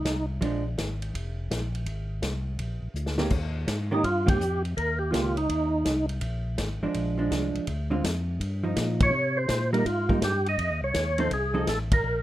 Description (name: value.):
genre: soul jazz organ trio.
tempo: 165 BPM.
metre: 4/4.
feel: swing 66% on 8ths.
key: Bb mixolydian.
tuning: A4 = 439 Hz.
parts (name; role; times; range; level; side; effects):
percussive tonewheel organ; melody; 0.0-0.3, 3.9-6.1, 9.0-12.2 s; Eb4 to Eb5; -26 LUFS; right 1 dB; slow rotary speaker, overdrive, chorus vibrato.
tonewheel organ; bass; 0.0-12.2 s; F1 to C3; -30 LUFS; equal; none.
vintage drum kit; drums; 0.1-12.0 s; crash cymbal, hi-hat, kick drum, ride cymbal, snare drum; -30 LUFS; left 1 dB; none.
hollow-body jazz guitar; accompaniment; 0.4-0.6, 3.2-11.7 s; D3 to A4; -28 LUFS; right 2 dB; none.
room: light reverb.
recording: rough home demo mix.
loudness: -25 LUFS.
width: side -14 dB against mid.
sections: 0.0-12.2 A section.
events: drum fill 2.9-3.3; band accent 4.2, 8.9, 11.8.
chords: 0.4 Bb7; 1.9 Ab; 2.6 Bb; 3.3 Eb7; 6.2 Bb7; 7.7 Dm7b5; 8.4 Eb9/G; 9.1 Cm7; 10.6 F7.